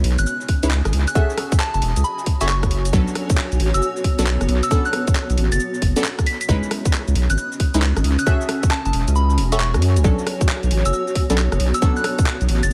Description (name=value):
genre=UK garage, two-step garage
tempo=135 BPM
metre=4/4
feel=swing 65% on 16ths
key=unclear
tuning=A4 = 440 Hz
part: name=punchy chord stab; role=stabs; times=0.0-12.7 s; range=F#3 to E5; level=-28 LUFS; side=equal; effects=chorus, dub echo
part: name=saturated sub bass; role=bass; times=0.0-12.7 s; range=E1 to F#2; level=-20 LUFS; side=equal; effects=tube saturation
part: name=garage drum kit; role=drums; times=0.0-12.7 s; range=cabasa, handclaps, hi-hat, rim click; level=-29 LUFS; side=equal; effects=studio reverb, tape echo
part: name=granular cloud pad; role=texture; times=0.0-12.7 s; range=B3 to D#6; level=-30 LUFS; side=equal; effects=built-in reverb, sidechain pumping
part: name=soft synth bell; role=melody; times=0.2-12.7 s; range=A5 to B6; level=-28 LUFS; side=equal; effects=chorus, tape echo
part: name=electronic kick drum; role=drums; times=0.5-12.2 s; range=none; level=-21 LUFS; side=equal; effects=studio reverb
room=light reverb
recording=echo-heavy mix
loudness=-19 LUFS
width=mono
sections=0.0-12.7 A section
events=kick drops out 9.2-10.0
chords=0.0 C#m9; 1.2 F#m9; 2.9 Bm9; 6.5 C#m9; 8.3 F#m9; 10.0 Bm9